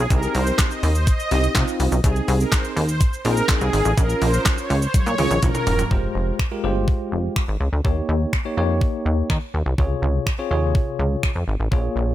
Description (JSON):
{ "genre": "dance-pop", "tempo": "124 BPM", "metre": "4/4", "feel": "straight", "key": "F minor", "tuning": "A4 = 441 Hz", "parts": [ { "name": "plucky analog bass", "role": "bass", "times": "0.0-12.1 s", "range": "E1 to Eb3", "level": "-21 LUFS", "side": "equal", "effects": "sidechain pumping" }, { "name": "supersaw pad", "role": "melody", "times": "0.1-5.8 s", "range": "Ab4 to Eb5", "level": "-26 LUFS", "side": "right 1 dB", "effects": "sidechain pumping, tape echo" }, { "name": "bell-like tine electric piano", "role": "accompaniment", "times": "0.1-12.1 s", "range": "C3 to Db5", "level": "-26 LUFS", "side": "left 1 dB", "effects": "medium stereo tremolo, sidechain pumping" }, { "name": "crisp 8-bit digital drum machine", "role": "drums", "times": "0.1-11.8 s", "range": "finger snaps, handclaps, hi-hat, kick drum, shaker, snare drum, toms", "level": "-21 LUFS", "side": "equal", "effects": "none" } ], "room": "little or no reverb", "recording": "none", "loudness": "-18 LUFS", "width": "side -13 dB against mid", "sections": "0.0-5.9 A section; 5.9-12.1 B section", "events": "drop 0.0-5.9; drum fill 4.9-5.9", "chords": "0.1 Cm; 2.0 Ab/C; 4.0 Bbm; 5.9 Fmadd9; 7.8 Eb7; 9.8 Dbmaj7" }